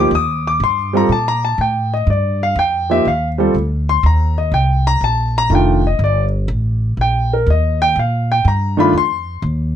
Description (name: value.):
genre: modal jazz.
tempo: 122 BPM.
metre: 4/4.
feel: swing 68% on 8ths.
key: C dorian.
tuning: A4 = 440 Hz.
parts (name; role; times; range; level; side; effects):
warm grand piano; accompaniment; 0.0-9.4 s; Eb3 to Eb6; -16 LUFS; equal; none.
upright bass; bass; 0.0-9.8 s; F1 to Bb2; -17 LUFS; equal; none.
room: little or no reverb.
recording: close, detailed microphones.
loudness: -14 LUFS.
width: side -10 dB against mid.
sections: 0.0-9.8 A section.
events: none.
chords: 0.0 Cm9.